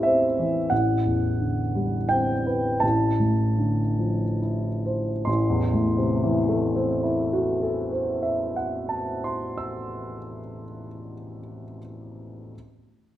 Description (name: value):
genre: classical, impressionist solo piano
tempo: 34-46 BPM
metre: 3/4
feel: rubato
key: A dorian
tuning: A4 = 440 Hz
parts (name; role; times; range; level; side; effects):
- warm grand piano; solo; 0.0-12.6 s; A1 to E6; -23 LUFS; equal; none
room: moderate recital hall reverb, RT60 1.4 s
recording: none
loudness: -22 LUFS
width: side -13 dB against mid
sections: 0.7-5.3 A section; 5.3-10.3 B section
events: slowing down 0.0-5.3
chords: 0.0 Am7; 0.7 Am11; 2.8 Dm9/A; 5.3 Am6